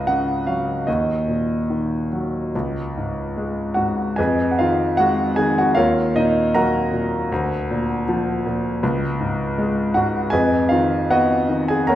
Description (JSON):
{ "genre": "classical, lyrical solo piano", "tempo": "77 BPM", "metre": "4/4", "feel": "uneven beats, rubato", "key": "unclear", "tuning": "A4 = 440 Hz", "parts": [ { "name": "clear concert grand piano", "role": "solo", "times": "0.0-12.0 s", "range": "Db2 to Bb5", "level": "-18 LUFS", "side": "equal", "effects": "none" } ], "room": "wet recital hall reverb, RT60 1.5 s", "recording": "none", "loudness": "-18 LUFS", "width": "side -12 dB against mid", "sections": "0.0-2.5 A section; 2.5-12.0 B section", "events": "none", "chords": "0.0 Dbsus4; 0.9 Ebm; 2.5 Db5; 4.2 Fm7b5; 5.8 Ebm7; 7.3 Bb/D; 8.8 Db5; 10.3 Fm7b5" }